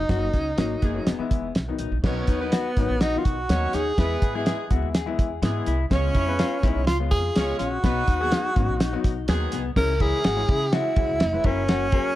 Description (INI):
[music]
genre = uptempo 1960s-style soul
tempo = 124 BPM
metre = 4/4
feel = straight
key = unclear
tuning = A4 = 438 Hz
[part]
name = breathy tenor saxophone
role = melody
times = 0.0-12.2 s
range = B3 to A#4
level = -26 LUFS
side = right 1 dB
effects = none
[part]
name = mellow electric guitar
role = riff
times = 0.0-12.1 s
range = A#3 to G#4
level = -32 LUFS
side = left 10 dB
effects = none
[part]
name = upright bass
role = bass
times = 0.0-12.0 s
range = E1 to C#3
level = -28 LUFS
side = equal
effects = none
[part]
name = warm upright piano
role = accompaniment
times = 0.1-12.1 s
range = D#3 to B4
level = -32 LUFS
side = left 6 dB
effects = none
[part]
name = cloth-damped thuddy drum kit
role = drums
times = 0.1-12.0 s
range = crash cymbal, hi-hat, kick drum, ride cymbal, snare drum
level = -23 LUFS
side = equal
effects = none
[part]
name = warm horn section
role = second line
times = 0.8-9.6 s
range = D#3 to C#5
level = -32 LUFS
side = right 3 dB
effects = none
[sound]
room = light reverb, small room reverb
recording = dark, warm production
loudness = -21 LUFS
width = side -14 dB against mid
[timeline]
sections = 0.0-2.0 A section; 2.0-9.8 B section; 9.8-12.2 C section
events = band accent 0.1-2.0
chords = 0.1 F#; 1.1 E; 1.6 B; 4.0 E; 5.9 C#7; 7.8 B; 9.8 C#m; 11.4 F#